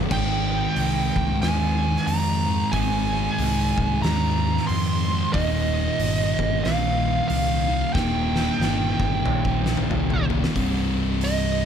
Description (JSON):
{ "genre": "stoner and doom metal", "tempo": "92 BPM", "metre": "4/4", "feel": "swing 60% on 8ths", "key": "unclear", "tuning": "A4 = 442 Hz", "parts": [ { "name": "thick fuzz guitar", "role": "riff", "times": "0.0-11.7 s", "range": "C2 to Ab3", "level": "-27 LUFS", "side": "left 13 dB", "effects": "distortion" }, { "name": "thick fuzz guitar", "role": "riff", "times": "0.0-11.7 s", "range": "C2 to Ab3", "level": "-27 LUFS", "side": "right 8 dB", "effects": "distortion" }, { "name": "fuzz lead guitar", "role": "melody", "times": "0.1-11.7 s", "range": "Eb5 to C6", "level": "-26 LUFS", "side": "right 3 dB", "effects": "distortion" }, { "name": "overdriven picked electric bass", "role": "bass", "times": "0.1-11.7 s", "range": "C1 to F2", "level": "-26 LUFS", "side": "left 1 dB", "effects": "tube saturation" }, { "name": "oversized low-tuned drum kit", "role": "drums", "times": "0.1-11.4 s", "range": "crash cymbal, hi-hat, kick drum, snare drum, splash cymbal, toms", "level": "-28 LUFS", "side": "left 1 dB", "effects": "none" } ], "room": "light reverb", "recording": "none", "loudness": "-20 LUFS", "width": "side -8 dB against mid", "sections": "0.0-10.6 A section; 10.6-11.7 B section", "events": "drum fill 8.0-10.6; lead electric guitar solo 10.6-11.7", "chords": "0.1 Ab; 5.3 Eb; 10.6 Cm" }